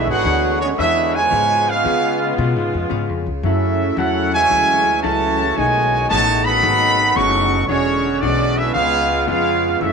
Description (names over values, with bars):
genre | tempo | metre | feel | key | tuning
jazz, big band swing | 113 BPM | 4/4 | swing 68% on 8ths | unclear | A4 = 441 Hz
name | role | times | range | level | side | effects
clear trumpet section | melody | 0.0-9.9 s | B3 to C#6 | -17 LUFS | right 1 dB | none
dark trombone section | second line | 0.0-9.9 s | A2 to F#4 | -22 LUFS | right 8 dB | none
vintage hollow-body jazz guitar | accompaniment | 0.0-9.9 s | F#2 to C#5 | -25 LUFS | left 12 dB | none
mellow saxophone section | sustained chords | 0.0-9.9 s | C#3 to C#5 | -26 LUFS | left 1 dB | none
upright bass | bass | 0.0-9.9 s | E1 to C#3 | -24 LUFS | left 2 dB | none
room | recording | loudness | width
wet echo chamber reverb, RT60 1.5 s | 1960s-style stereo with parts hard left and right | -15 LUFS | side -5 dB against mid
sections
0.0-9.9 A section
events
none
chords
0.0 E13; 1.3 C#7; 3.4 F#m7; 5.6 B13; 7.7 E13; 8.8 C#7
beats
0.26 0.79 | 1.32 1.85 2.38 2.91 | 3.44 3.98 4.51 5.04 | 5.57 6.10 6.63 7.17 | 7.70 8.23 8.76 9.29 | 9.82